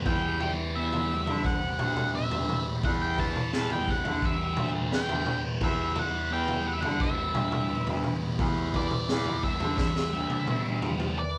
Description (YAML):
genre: psychedelic rock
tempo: 86 BPM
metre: 4/4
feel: straight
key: E minor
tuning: A4 = 437 Hz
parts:
  - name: tonewheel organ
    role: sustained chords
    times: 0.0-11.4 s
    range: E3 to B5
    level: -46 LUFS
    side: equal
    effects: none
  - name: thick fuzz guitar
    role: riff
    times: 0.0-11.2 s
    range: E3 to E4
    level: -34 LUFS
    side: equal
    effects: distortion, phaser
  - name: octave-fuzz lead guitar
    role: melody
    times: 0.1-11.4 s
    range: D5 to A5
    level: -35 LUFS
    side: equal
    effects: distortion
  - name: clear baritone saxophone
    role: bass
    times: 0.1-10.9 s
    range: D2 to D3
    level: -36 LUFS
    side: equal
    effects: none
  - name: raw garage drum kit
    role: drums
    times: 0.1-11.2 s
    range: kick drum, snare drum, toms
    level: -33 LUFS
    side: equal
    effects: none
room: moderate large studio reverb, RT60 0.9 s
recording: band playing live in one room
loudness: -28 LUFS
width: mono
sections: 0.0-11.2 A section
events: drum fill 9.8-11.2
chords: 0.0 Em